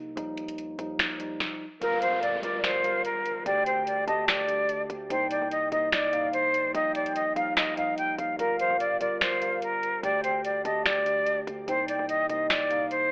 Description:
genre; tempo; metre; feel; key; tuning
hip hop, trap; 146 BPM; 4/4; half-time; G minor; A4 = 441 Hz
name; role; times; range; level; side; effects
mellow tine electric piano; accompaniment; 0.0-13.1 s; C3 to Bb4; -34 LUFS; equal; slow stereo tremolo
distorted 808-style bass; bass; 0.0-13.1 s; G1 to Eb2; -43 LUFS; equal; distortion
booming analog drum machine; drums; 0.2-13.0 s; finger snaps, hi-hat, kick drum, snare drum; -28 LUFS; equal; none
jazz flute; melody; 1.8-13.1 s; Bb4 to G5; -26 LUFS; equal; none
warm velvety synth lead; second line; 1.8-12.9 s; D5 to A5; -33 LUFS; equal; chorus, tape echo
downlifter; sound effects; 1.8-5.1 s; none; -40 LUFS; equal; none
room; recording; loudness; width
light reverb, digital ambience; telephone sound; -24 LUFS; side -27 dB against mid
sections
0.0-1.8 A section; 1.8-13.1 B section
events
stop 1.4-1.8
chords
0.2 Ebadd9; 1.8 Gm7; 3.5 Dsus4; 5.1 Cm7; 6.7 Ebadd9; 8.4 Gm7; 10.0 Dsus4; 11.7 Cm7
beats
| 0.17 0.58 0.99 1.40 | 1.81 2.23 2.64 3.05 | 3.46 3.87 4.28 4.69 | 5.10 5.51 5.92 6.33 | 6.75 7.16 7.57 7.98 | 8.39 8.80 9.21 9.62 | 10.03 10.45 10.86 11.27 | 11.68 12.09 12.50 12.91

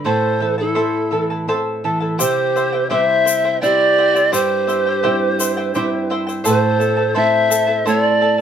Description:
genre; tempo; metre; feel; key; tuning
andean folk, Andean ensemble; 85 BPM; 3/4; straight; unclear; A4 = 439 Hz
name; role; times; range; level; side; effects
charango; accompaniment; 0.0-8.4 s; E4 to A5; -22 LUFS; left 1 dB; none
nylon-string guitar; accompaniment; 0.0-8.4 s; G2 to E4; -23 LUFS; right 3 dB; none
breathy polished pan flute; melody; 0.1-8.4 s; A4 to E5; -16 LUFS; right 2 dB; none
large quena; second line; 0.1-8.4 s; E4 to C5; -23 LUFS; left 8 dB; none
egg shaker; percussion; 2.2-8.0 s; none; -25 LUFS; left 7 dB; none
room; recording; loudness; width
moderate studio reverb, RT60 0.6 s; none; -14 LUFS; side -8 dB against mid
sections
0.0-2.2 A section; 2.2-8.4 B section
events
none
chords
0.1 Am; 2.2 C; 6.5 Am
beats
| 0.06 0.77 1.49 | 2.20 2.92 3.63 | 4.34 5.04 5.75 | 6.46 7.16 7.87

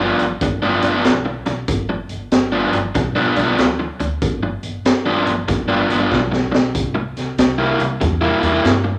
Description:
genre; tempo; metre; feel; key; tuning
electric blues shuffle; 95 BPM; 4/4; swing 65% on 8ths; G mixolydian; A4 = 440 Hz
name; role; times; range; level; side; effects
raw garage guitar; riff; 0.0-8.9 s; G2 to E4; -20 LUFS; equal; overdrive
upright bass; bass; 0.0-8.9 s; G1 to G2; -28 LUFS; equal; none
raw garage drum kit; drums; 0.2-8.8 s; hi-hat, kick drum, snare drum; -22 LUFS; equal; none
room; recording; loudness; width
light reverb; none; -18 LUFS; mono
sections
0.0-9.0 A section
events
drum fill 6.1-6.7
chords
0.0 G7; 6.7 C7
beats
0.41 1.05 | 1.68 2.32 2.95 3.58 | 4.22 4.85 5.48 6.12 | 6.75 7.38 8.01 8.64

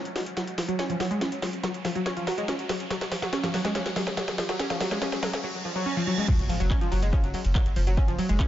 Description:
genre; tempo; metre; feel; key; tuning
driving peak-time techno; 142 BPM; 4/4; straight; unclear; A4 = 440 Hz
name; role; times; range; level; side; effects
riser, reverse cymbal and impact; sound effects; 0.0-8.0 s; none; -37 LUFS; right 1 dB; none
techno drum kit; drums; 0.1-8.5 s; crash cymbal, handclaps, hi-hat, ride cymbal, snare drum; -32 LUFS; equal; high-pass filter on snare, sidechain pumping on hats, high-pass filter on hats, sidechain pumping on cymbals, high-pass filter on cymbals, high-pass filter on room, analog delay
analog pluck; riff; 0.2-8.5 s; E#3 to C#4; -29 LUFS; equal; chorus, phaser, overdrive, sidechain pumping, dub echo
electronic kick drum; drums; 6.3-8.5 s; none; -24 LUFS; equal; none
saturated sub bass; bass; 6.4-8.4 s; F#1; -25 LUFS; equal; overdrive, sidechain pumping, low-pass filter
room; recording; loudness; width
moderate echo chamber reverb, RT60 1.6 s; echo-heavy mix, nothing above 7.5 kHz; -25 LUFS; side -12 dB against mid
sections
0.0-6.3 A section; 6.3-8.5 B section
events
build-up 0.0-6.3; drum fill 0.0-5.4; riser 0.0-6.3; filter sweep on synth arpeggio sound 0.0-6.3; reverse cymbal 5.4-6.3; drop 6.3-8.5; impact 6.3-8.0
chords
0.0 F#5; 6.3 N.C.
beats
0.37 0.79 | 1.21 1.64 2.06 2.48 | 2.90 3.33 3.75 4.17 | 4.59 5.02 5.44 5.86 | 6.28 6.71 7.13 7.55 | 7.97 8.40

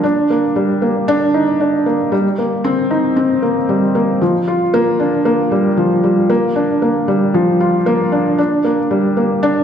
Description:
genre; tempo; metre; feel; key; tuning
electronica; 115 BPM; 4/4; straight; G minor; A4 = 441 Hz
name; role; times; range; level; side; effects
felt-muted upright piano; solo; 0.0-9.6 s; F3 to F4; -13 LUFS; equal; none
room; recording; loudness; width
wet recital hall reverb, RT60 1.5 s; none; -13 LUFS; side -8 dB against mid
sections
0.0-9.6 A section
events
none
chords
none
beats
| 0.04 0.56 1.08 1.60 | 2.12 2.65 3.17 3.69 | 4.21 4.73 5.25 5.78 | 6.30 6.82 7.34 7.86 | 8.38 8.91 9.43

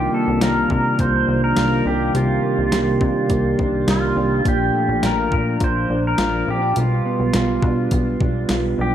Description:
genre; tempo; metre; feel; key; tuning
dream pop; 104 BPM; 4/4; straight; unclear; A4 = 439 Hz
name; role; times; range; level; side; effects
pedal steel guitar; melody; 0.0-8.9 s; F4 to C5; -23 LUFS; equal; lush chorus, ping-pong delay
mellow tonewheel organ; sustained chords; 0.0-8.9 s; Bb2 to G4; -22 LUFS; right 2 dB; slow rotary speaker
mellow electric guitar; arpeggios; 0.0-8.9 s; Bb2 to F4; -24 LUFS; left 2 dB; analog chorus, ping-pong delay
plucky analog bass; bass; 0.0-8.9 s; Bb1 to C3; -24 LUFS; equal; none
clean 12-bit digital drum machine; drums; 0.4-8.6 s; hi-hat, kick drum, snare drum; -23 LUFS; equal; none
room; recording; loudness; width
wet plate reverb, RT60 1.9 s, digital ambience; dreamy mix soaked in reverb; -16 LUFS; side -10 dB against mid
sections
0.0-8.9 A section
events
none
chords
0.0 Cm11; 4.5 Bbmaj7; 6.8 G7/B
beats
0.42 0.99 1.57 | 2.15 2.72 3.30 3.88 | 4.45 5.03 5.61 6.18 | 6.76 7.34 7.92 8.49

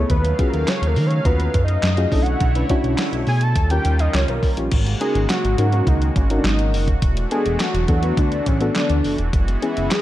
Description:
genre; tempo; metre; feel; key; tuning
early-eighties boogie funk; 104 BPM; 4/4; straight; unclear; A4 = 437 Hz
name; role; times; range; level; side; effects
fat analog lead; melody; 0.0-10.0 s; C#4 to A5; -24 LUFS; equal; ping-pong delay
FM electric piano with tremolo; accompaniment; 0.0-10.0 s; B3 to A#5; -25 LUFS; left 2 dB; none
brassy analog pad; sustained chords; 0.0-10.0 s; C#3 to E#5; -29 LUFS; right 2 dB; chorus
chorused synth bass; bass; 0.0-9.9 s; E1 to D#3; -20 LUFS; equal; none
clean 12-bit digital drum machine; drums; 0.1-10.0 s; crash cymbal, handclaps, hi-hat, kick drum, snare drum; -21 LUFS; equal; none
room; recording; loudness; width
light reverb, digital ambience; none; -16 LUFS; side -14 dB against mid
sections
0.0-4.7 A section; 4.7-10.0 B section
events
analog synth lead solo 0.0-4.7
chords
0.1 D#m11; 2.1 Bm11; 3.6 D#9; 4.7 G#9sus4; 7.0 E9sus4; 9.3 F#9sus4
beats
| 0.10 0.68 1.26 1.83 | 2.41 2.99 3.56 4.14 | 4.72 5.29 5.87 6.45 | 7.03 7.60 8.18 8.76 | 9.33 9.91

